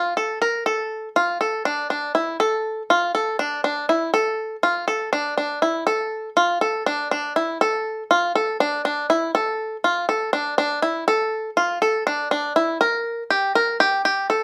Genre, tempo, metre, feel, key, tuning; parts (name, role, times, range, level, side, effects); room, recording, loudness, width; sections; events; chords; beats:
contemporary instrumental, contemporary; 242 BPM (eighths); 7/8; straight; A4 = 441 Hz
bluegrass banjo; solo; 0.0-14.4 s; D4 to Bb4; -22 LUFS; equal
moderate studio reverb, RT60 0.7 s; -22 LUFS; mono
0.7-14.4 A section
0.17 0.42 | 0.67 0.92 1.17 1.41 1.66 1.91 2.16 | 2.41 2.65 2.90 3.15 3.40 3.65 3.89 | 4.14 4.39 4.64 4.88 5.13 5.38 5.63 | 5.88 6.12 6.37 6.62 6.87 7.12 7.36 | 7.61 7.86 8.11 8.35 8.60 8.85 9.10 | 9.35 9.59 9.84 10.09 10.34 10.58 10.83 | 11.08 11.33 11.57 11.82 12.07 12.32 12.56 | 12.81 13.06 13.31 13.56 13.80 14.05 14.30